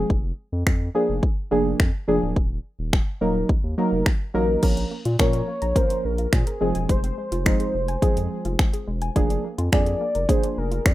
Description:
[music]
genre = dance-pop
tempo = 106 BPM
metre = 4/4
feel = straight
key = unclear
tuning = A4 = 441 Hz
[part]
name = deep mellow chord stab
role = accompaniment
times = 0.0-10.9 s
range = F3 to Bb4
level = -24 LUFS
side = equal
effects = chorus, sidechain pumping
[part]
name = saturated sub bass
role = bass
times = 0.0-10.9 s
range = D1 to Bb2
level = -26 LUFS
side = equal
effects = sidechain pumping
[part]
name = house drum kit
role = drums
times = 0.1-10.9 s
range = crash cymbal, finger snaps, hi-hat, kick drum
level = -21 LUFS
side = equal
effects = none
[part]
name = soft round pluck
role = arpeggios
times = 4.6-10.9 s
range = Ab3 to Bb5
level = -34 LUFS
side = left 2 dB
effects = chorus, sidechain pumping, analog delay
[part]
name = warm velvety synth lead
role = melody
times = 5.2-10.9 s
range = Ab4 to D5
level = -28 LUFS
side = equal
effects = chorus, analog delay
[sound]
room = light reverb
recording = rough home demo mix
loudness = -20 LUFS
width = side -16 dB against mid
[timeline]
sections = 0.0-4.6 A section; 4.6-10.9 B section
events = none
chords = 0.1 Bb7/F; 2.4 Ebm; 4.6 Bbm; 6.6 Fm; 9.2 Bb7/F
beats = | 0.10 0.67 1.23 1.80 | 2.37 2.93 3.50 4.06 | 4.63 5.20 5.76 6.33 | 6.89 7.46 8.03 8.59 | 9.16 9.72 10.29 10.86

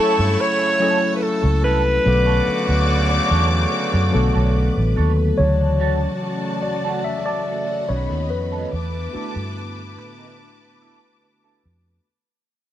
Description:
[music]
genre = lush 1970s-style soul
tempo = 72 BPM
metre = 4/4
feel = straight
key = B minor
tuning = A4 = 440 Hz
[part]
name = breathy alto saxophone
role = melody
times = 0.0-3.3 s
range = A4 to C#5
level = -20 LUFS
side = equal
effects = none
[part]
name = muted studio string section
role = second line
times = 0.0-12.0 s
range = F#4 to D6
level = -28 LUFS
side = left 4 dB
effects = slapback echo
[part]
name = mellow tine electric piano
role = accompaniment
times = 0.0-12.1 s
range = C#3 to E5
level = -23 LUFS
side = left 2 dB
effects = phaser
[part]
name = string machine, violins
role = sustained chords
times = 0.0-12.0 s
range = C#3 to E6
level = -33 LUFS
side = right 1 dB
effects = ensemble chorus
[part]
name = electric guitar through a small old amp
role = riff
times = 0.0-11.9 s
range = B3 to C#5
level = -29 LUFS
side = right 11 dB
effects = wah
[part]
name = clear horn section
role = stabs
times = 0.0-4.9 s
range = C#3 to F#4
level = -26 LUFS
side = right 3 dB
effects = none
[part]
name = vintage muted fingered electric bass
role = bass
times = 0.2-12.0 s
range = A1 to A2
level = -19 LUFS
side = equal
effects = none
[sound]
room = light reverb, studio reverb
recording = none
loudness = -17 LUFS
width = side -12 dB against mid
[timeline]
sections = 0.0-5.4 A section; 5.4-12.1 B section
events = fade-out 5.4-12.1; tine electric piano solo 5.4-12.1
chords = 0.0 F#m7; 2.1 Bm9; 5.4 Dmaj7; 7.9 B7; 8.7 E7sus4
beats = 0.39 1.22 | 2.06 2.89 3.72 4.56 | 5.39 6.22 7.06 7.89 | 8.73 9.56 10.39 11.23

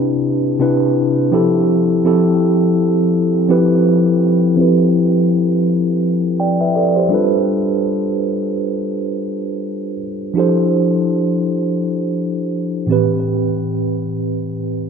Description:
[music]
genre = R&B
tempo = 83 BPM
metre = 4/4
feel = swing 58% on 16ths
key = unclear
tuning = A4 = 440 Hz
[part]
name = mellow tine electric piano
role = solo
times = 0.0-14.9 s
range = A2 to G5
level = -14 LUFS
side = equal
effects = slow stereo tremolo, low-pass filter, ping-pong delay
[sound]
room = wet church reverb, RT60 2.4 s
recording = dreamy mix soaked in reverb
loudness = -14 LUFS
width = side -6 dB against mid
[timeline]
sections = 0.0-4.6 A section; 4.6-14.9 B section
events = filter sweep on tine electric piano 4.6-14.9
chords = 0.0 Cmaj7; 1.3 Fmaj9#11; 7.1 G9; 10.4 Dm11/F; 12.9 Am7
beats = 0.23 0.96 | 1.68 2.40 3.13 3.85 | 4.57 5.29 6.02 6.74 | 7.46 8.19 8.91 9.63 | 10.36 11.08 11.80 12.52 | 13.25 13.97 14.69

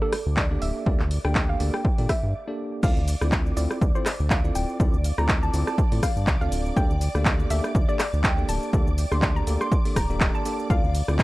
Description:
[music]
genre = deep house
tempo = 122 BPM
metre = 4/4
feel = swing 56% on 16ths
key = D minor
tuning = A4 = 440 Hz
[part]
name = soft round pluck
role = melody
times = 0.0-11.0 s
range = A4 to C6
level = -32 LUFS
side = equal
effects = chorus, analog delay
[part]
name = bell-like tine electric piano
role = stabs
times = 0.0-11.2 s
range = Bb3 to D5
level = -32 LUFS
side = equal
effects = medium stereo tremolo, sidechain pumping
[part]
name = analog string pad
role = texture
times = 0.0-11.2 s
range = D5 to D6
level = -38 LUFS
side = right 1 dB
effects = ensemble chorus
[part]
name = punchy analog drum machine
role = drums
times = 0.1-11.2 s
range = crash cymbal, handclaps, hi-hat, rim click, shaker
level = -29 LUFS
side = equal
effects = vintage 12-bit sampler grit
[part]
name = round analog bass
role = bass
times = 0.3-11.2 s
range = D1 to Bb2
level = -25 LUFS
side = equal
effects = tube saturation, sidechain pumping
[part]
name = electronic kick drum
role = drums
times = 0.4-11.2 s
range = none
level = -23 LUFS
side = equal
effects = vintage 12-bit sampler grit
[sound]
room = little or no reverb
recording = dry, gritty hardware recording, transformer saturation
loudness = -21 LUFS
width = side -19 dB against mid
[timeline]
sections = 0.0-2.8 A section; 2.8-11.2 B section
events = break 2.3-2.8; drop 2.8-11.2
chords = 0.0 Gmadd9/D; 2.8 Dm9; 6.8 Gmadd9/D; 10.7 Dm9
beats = 0.37 | 0.86 1.36 1.85 2.34 | 2.83 3.32 3.81 4.31 | 4.80 5.29 5.78 6.27 | 6.77 7.26 7.75 8.24 | 8.73 9.22 9.72 10.21 | 10.70 11.19

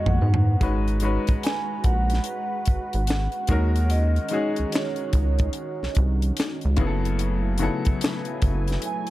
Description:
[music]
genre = R&B, neo-soul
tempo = 73 BPM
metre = 4/4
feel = swing 62% on 16ths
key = G# minor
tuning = A4 = 439 Hz
[part]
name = vibraphone with soft mallets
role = melody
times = 0.0-9.1 s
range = B4 to G#5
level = -32 LUFS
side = right 2 dB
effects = none
[part]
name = bright grand piano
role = accompaniment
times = 0.0-9.1 s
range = C#3 to C#5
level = -30 LUFS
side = left 4 dB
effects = none
[part]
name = warm analog pad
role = sustained chords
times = 0.0-9.1 s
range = D#3 to A#5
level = -34 LUFS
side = right 1 dB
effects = chorus
[part]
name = rubbery square bass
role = bass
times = 0.1-8.8 s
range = F#1 to G#2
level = -22 LUFS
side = equal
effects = none
[part]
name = tight funk drum kit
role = drums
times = 0.1-9.1 s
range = finger snaps, hi-hat, kick drum, snare drum, toms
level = -24 LUFS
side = equal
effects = none
[sound]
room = studio ambience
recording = dark, warm production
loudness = -21 LUFS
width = side -16 dB against mid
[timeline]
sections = 0.6-9.1 A section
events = drum fill 0.0-0.6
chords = 0.0 G#m9; 3.5 D#m7; 6.8 F#m9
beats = | 0.62 1.44 2.26 3.08 | 3.90 4.73 5.55 6.37 | 7.19 8.01 8.84

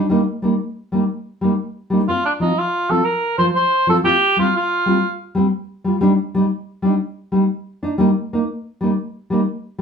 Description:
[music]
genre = highlife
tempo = 122 BPM (dotted quarters)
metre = 12/8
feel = straight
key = Bb major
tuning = A4 = 441 Hz
[part]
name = nylon-string guitar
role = accompaniment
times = 0.0-9.8 s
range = F3 to F4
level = -17 LUFS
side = equal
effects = none
[part]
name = mellow cor anglais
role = melody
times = 2.1-5.2 s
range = D4 to C5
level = -16 LUFS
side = right 1 dB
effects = none
[sound]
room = wet studio reverb, RT60 0.6 s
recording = band playing live in one room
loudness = -16 LUFS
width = side -6 dB against mid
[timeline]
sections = 0.0-2.1 A section; 2.1-9.8 B section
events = none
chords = 0.1 Eb; 2.1 Bbsus2 (rootless); 4.1 Fsus2; 6.0 Ebmaj7/G; 8.0 Eb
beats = | 0.11 0.60 1.09 1.59 | 2.08 2.58 3.07 3.56 | 4.05 4.54 5.04 5.53 | 6.02 6.51 7.01 7.50 | 7.99 8.48 8.97 9.47

